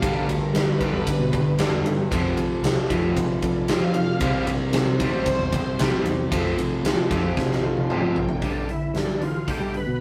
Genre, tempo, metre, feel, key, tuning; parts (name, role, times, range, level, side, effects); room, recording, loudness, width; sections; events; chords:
classic rock; 114 BPM; 4/4; straight; G mixolydian; A4 = 440 Hz
overdriven reed electric piano; accompaniment; 0.0-8.4 s; D4 to D5; -36 LUFS; equal
string machine, full ensemble; sustained chords; 0.0-8.4 s; Bb4 to C6; -34 LUFS; equal; ensemble chorus
crunchy overdriven guitar; riff; 0.0-10.0 s; F2 to G3; -31 LUFS; equal
crunchy overdriven guitar; riff; 0.0-8.4 s; F2 to C4; -29 LUFS; equal
picked electric bass; bass; 0.0-10.0 s; A1 to G3; -30 LUFS; equal
huge arena drum kit; drums; 0.0-9.9 s; hi-hat, kick drum, ride cymbal, snare drum, toms; -28 LUFS; equal
overdriven tonewheel organ; melody; 8.4-10.0 s; D4 to B4; -34 LUFS; equal; slow rotary speaker, chorus vibrato
moderate studio reverb, RT60 0.5 s; rough rehearsal-room recording; -23 LUFS; mono
0.0-8.4 A section; 8.4-10.0 B section
drum fill 7.4-8.4
0.0 G; 2.1 F; 4.2 C; 6.3 F; 8.4 G